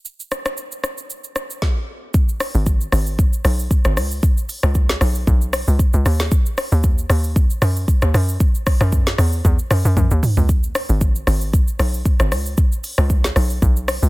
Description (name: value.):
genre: amapiano.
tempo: 115 BPM.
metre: 4/4.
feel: swing 55% on 16ths.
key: G# minor.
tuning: A4 = 440 Hz.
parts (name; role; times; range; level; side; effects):
deep house drum kit; drums; 0.1-14.1 s; hi-hat, kick drum, rim click, shaker, snare drum, toms; -18 LUFS; equal; none.
tight log drum bass; bass; 2.5-14.1 s; G#1 to F#2; -17 LUFS; equal; none.
room: digital ambience.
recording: dense, heavily limited modern master.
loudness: -16 LUFS.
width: side -21 dB against mid.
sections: 0.0-2.1 A section; 2.1-14.1 B section.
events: drop 2.1-14.1; drum fill 10.0-10.5.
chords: none.